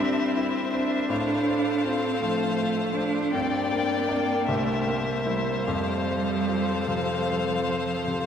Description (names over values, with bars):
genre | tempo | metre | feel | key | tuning
classical, slow romantic movement for piano quintet | 49-56 BPM (dotted quarters) | 12/8 | rubato | F major | A4 = 440 Hz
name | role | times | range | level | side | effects
rich violin | melody | 0.0-8.3 s | E5 to G5 | -31 LUFS | left 5 dB | none
clear cello | second line | 0.0-8.3 s | F3 to D4 | -27 LUFS | right 2 dB | none
warm violin | second line | 0.0-8.3 s | C5 to D5 | -33 LUFS | left 2 dB | none
bright grand piano | accompaniment | 0.0-8.3 s | C2 to D5 | -30 LUFS | left 1 dB | none
clear viola | accompaniment | 0.0-8.3 s | A4 to Bb4 | -33 LUFS | equal | none
room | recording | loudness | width
wet church reverb, RT60 3.5 s | none | -23 LUFS | side -8 dB against mid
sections
0.0-8.3 A section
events
none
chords
0.0 C7/G; 1.1 F/A; 3.3 Gm; 4.5 C7; 5.7 F